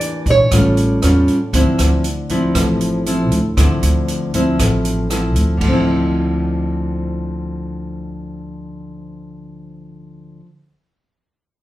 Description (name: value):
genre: bossa nova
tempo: 118 BPM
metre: 4/4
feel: straight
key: D minor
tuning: A4 = 441 Hz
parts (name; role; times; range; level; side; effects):
- nylon-string guitar; melody; 0.0-1.0 s; C#5 to D5; -17 LUFS; right 3 dB; none
- nylon-string guitar; accompaniment; 0.0-10.6 s; A2 to G4; -18 LUFS; equal; none
- open jazz drum kit; drums; 0.0-5.7 s; crash cymbal, hi-hat, kick drum, rim click; -22 LUFS; equal; none
- upright bass; bass; 0.3-10.4 s; A1 to E2; -19 LUFS; equal; none
room: wet large studio reverb, RT60 0.8 s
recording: band playing live in one room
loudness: -14 LUFS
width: side -15 dB against mid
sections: 0.0-1.5 A section; 1.5-5.6 B section; 5.6-9.7 C section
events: none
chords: 0.0 Em7b5; 0.5 A7b13; 1.5 Dm9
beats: 0.01 0.52 1.03 | 1.54 2.05 2.56 3.06 | 3.57 4.08 4.59 5.10 | 5.61 6.12 6.63 7.14 | 7.65 8.16 8.67 9.18